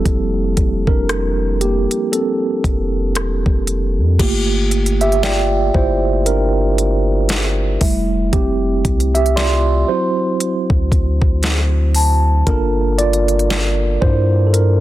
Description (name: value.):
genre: contemporary R&B.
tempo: 58 BPM.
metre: 4/4.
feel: swing 58% on 16ths.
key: G dorian.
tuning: A4 = 440 Hz.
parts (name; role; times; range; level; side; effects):
mellow tine electric piano; accompaniment; 0.0-14.8 s; F3 to E5; -18 LUFS; right 2 dB; medium stereo tremolo.
long sustained 808-style bass; bass; 0.0-14.8 s; E1 to G2; -17 LUFS; equal; none.
smooth R&B drum kit; drums; 0.1-14.8 s; crash cymbal, hi-hat, kick drum, rim click, snare drum; -19 LUFS; equal; none.
large celesta; texture; 5.2-12.9 s; E5 to C6; -26 LUFS; equal; tape echo.
room: little or no reverb.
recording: dense, heavily limited modern master.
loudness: -14 LUFS.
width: side -14 dB against mid.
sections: 0.0-4.2 A section; 4.2-14.8 B section.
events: tine electric piano solo 0.0-4.2, 4.2-14.8.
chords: 0.0 Fmaj7; 4.2 Gm7; 7.8 Fmaj7; 9.9 D7; 12.5 Gm7.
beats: | 0.05 1.09 2.12 3.16 | 4.19 5.23 6.26 7.29 | 8.33 9.36 10.40 11.43 | 12.47 13.50 14.54.